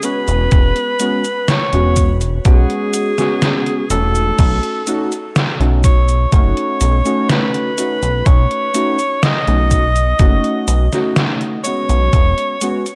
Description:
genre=vaporwave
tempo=62 BPM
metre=4/4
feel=straight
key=E major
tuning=A4 = 440 Hz
part: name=breathy alto saxophone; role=melody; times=0.0-13.0 s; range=G#4 to D#5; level=-22 LUFS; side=equal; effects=tape echo
part: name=warbly lo-fi synth keys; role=accompaniment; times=0.0-12.9 s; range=G#3 to F#4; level=-23 LUFS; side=equal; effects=subtle chorus, analog delay
part: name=detuned 8-bit digital drum machine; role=drums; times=0.0-13.0 s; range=cabasa, crash cymbal, hi-hat, snare drum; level=-22 LUFS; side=equal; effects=overdrive, gated reverb
part: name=chorused synth bass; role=bass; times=0.3-12.3 s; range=E1 to B1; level=-17 LUFS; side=equal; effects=none
part: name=electronic kick drum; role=drums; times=0.5-12.3 s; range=none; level=-14 LUFS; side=equal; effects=overdrive
room=light reverb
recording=cassette tape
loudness=-15 LUFS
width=mono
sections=0.0-13.0 A section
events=none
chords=0.0 E69; 4.4 B9; 12.1 E69

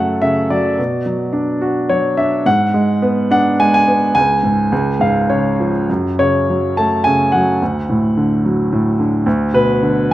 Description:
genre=classical, lyrical solo piano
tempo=107 BPM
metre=3/4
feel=rubato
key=F# minor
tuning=A4 = 439 Hz
part: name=warm baby grand piano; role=solo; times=0.0-10.1 s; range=C#2 to A5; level=-13 LUFS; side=equal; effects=none
room=light reverb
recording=none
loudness=-13 LUFS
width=side -14 dB against mid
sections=0.0-10.1 A section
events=none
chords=0.0 F#m; 0.8 Bm; 2.5 G#dim; 4.1 C#5; 4.7 C#; 5.9 F#m; 7.6 D; 9.3 Bm/D

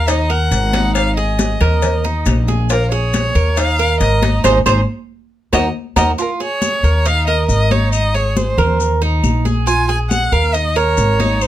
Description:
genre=latin, Cuban son and guajira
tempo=138 BPM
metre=4/4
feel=straight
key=unclear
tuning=A4 = 441 Hz
part: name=warm violin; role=melody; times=0.0-11.5 s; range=Bb4 to Ab5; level=-19 LUFS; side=equal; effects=none
part: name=Cuban tres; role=arpeggios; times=0.0-11.5 s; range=Eb4 to C5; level=-19 LUFS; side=right 4 dB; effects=none
part: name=upright bass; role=bass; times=0.0-11.5 s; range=Ab1 to Eb2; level=-16 LUFS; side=equal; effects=none
part: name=congas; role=percussion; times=0.1-11.5 s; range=none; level=-23 LUFS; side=left 2 dB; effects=none
part: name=cowbell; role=percussion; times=0.1-6.1 s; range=none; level=-24 LUFS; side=left 6 dB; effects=none
part: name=maracas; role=percussion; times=0.1-11.5 s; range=none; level=-29 LUFS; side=left 8 dB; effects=none
part: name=claves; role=percussion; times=0.3-11.5 s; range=none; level=-28 LUFS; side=left 9 dB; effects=none
room=little or no reverb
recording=close, detailed microphones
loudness=-13 LUFS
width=side -12 dB against mid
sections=0.0-6.2 A section; 6.2-11.5 A section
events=band accent 4.4-6.2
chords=0.1 Ab5; 1.8 Eb5; 2.7 Bbm7; 3.6 Eb5; 4.4 Ab; 5.3 Ebm; 6.2 Bbm7; 7.1 Eb5; 9.7 Bb5; 10.5 Ab5

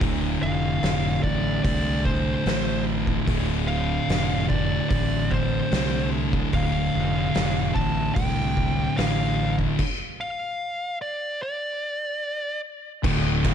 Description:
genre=stoner and doom metal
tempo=74 BPM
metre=4/4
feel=straight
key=D minor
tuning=A4 = 440 Hz
part: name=thick fuzz guitar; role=riff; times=0.0-13.5 s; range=D2 to D3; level=-27 LUFS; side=left 9 dB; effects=distortion
part: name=thick fuzz guitar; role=riff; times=0.0-13.5 s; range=D2 to D3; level=-27 LUFS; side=right 10 dB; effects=distortion
part: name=fuzz fingered electric bass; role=bass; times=0.0-13.5 s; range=D1 to C2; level=-28 LUFS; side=equal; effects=overdrive
part: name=oversized low-tuned drum kit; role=drums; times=0.0-13.5 s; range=crash cymbal, hi-hat, kick drum, ride cymbal, snare drum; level=-28 LUFS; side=equal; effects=none
part: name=fuzz lead guitar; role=melody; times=0.4-12.6 s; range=C5 to A5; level=-29 LUFS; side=equal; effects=distortion, ping-pong delay
part: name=crunchy overdriven guitar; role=riff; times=13.0-13.5 s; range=D2 to D3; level=-29 LUFS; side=right 1 dB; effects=none
room=little or no reverb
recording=dark, warm production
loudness=-22 LUFS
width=side -8 dB against mid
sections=0.0-13.0 A section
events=stop 9.8-13.0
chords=0.0 Dm; 13.0 D5

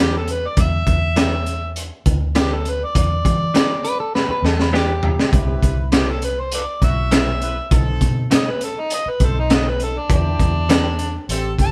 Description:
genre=straight-eighth soul blues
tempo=101 BPM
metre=4/4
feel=straight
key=E minor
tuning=A4 = 442 Hz
part: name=overdriven harmonica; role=melody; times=0.0-11.7 s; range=D4 to A5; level=-26 LUFS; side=equal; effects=none
part: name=direct-recorded clean electric guitar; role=stabs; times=0.0-10.9 s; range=B2 to G4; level=-26 LUFS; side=equal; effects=none
part: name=vintage muted fingered electric bass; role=bass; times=0.0-11.7 s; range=G1 to E3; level=-24 LUFS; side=equal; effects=none
part: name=crunchy breakbeat drum kit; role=drums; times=0.3-11.7 s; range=hi-hat, kick drum, snare drum, toms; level=-21 LUFS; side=equal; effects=none
part: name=electric guitar at the edge of break-up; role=second line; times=3.8-5.8 s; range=G4 to B4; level=-26 LUFS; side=equal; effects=none
part: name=bright horn section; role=sustained chords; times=5.3-11.7 s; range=C4 to C5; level=-32 LUFS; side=equal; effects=none
room=light reverb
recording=band playing live in one room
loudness=-19 LUFS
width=mono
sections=0.0-11.7 A section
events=drum fill 4.1-5.3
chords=0.0 Em7; 5.3 Cmaj7; 7.7 B7b9; 10.1 Em7

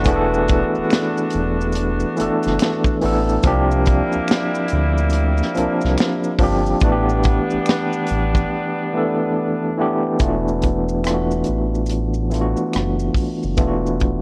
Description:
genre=R&B, neo-soul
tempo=71 BPM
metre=4/4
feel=swing 63% on 16ths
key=unclear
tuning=A4 = 440 Hz
part: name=overdriven tine electric piano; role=accompaniment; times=0.0-14.2 s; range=E3 to Bb4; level=-22 LUFS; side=equal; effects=fast tremolo
part: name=clear horn section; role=stabs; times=0.0-9.7 s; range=G3 to F#4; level=-28 LUFS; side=equal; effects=none
part: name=round analog bass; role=bass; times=0.0-14.2 s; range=E1 to D2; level=-24 LUFS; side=equal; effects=none
part: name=maracas and finger snaps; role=percussion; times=0.0-14.0 s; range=none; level=-38 LUFS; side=equal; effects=none
part: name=tight funk drum kit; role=drums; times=0.1-14.2 s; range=hi-hat, kick drum, rim click, snare drum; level=-22 LUFS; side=equal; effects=none
room=small room ambience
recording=worn, warbling old tape, cassette tape, warbly pitch drift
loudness=-19 LUFS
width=mono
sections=0.0-10.2 A section; 10.2-14.2 B section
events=break 8.5-10.2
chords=0.0 E9sus4; 3.4 C9sus4; 6.8 A9sus4; 10.2 E9sus4

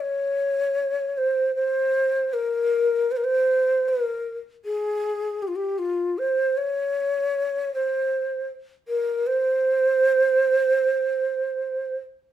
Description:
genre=arabic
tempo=78 BPM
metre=4/4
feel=straight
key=unclear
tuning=A4 = 442 Hz
part: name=breathy mellow ney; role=solo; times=0.0-12.0 s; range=F4 to Db5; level=-21 LUFS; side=right 1 dB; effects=none
room=moderate studio reverb, RT60 0.7 s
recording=minimal, uncompressed stereo recording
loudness=-21 LUFS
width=side -11 dB against mid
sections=0.0-12.3 A section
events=none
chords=none

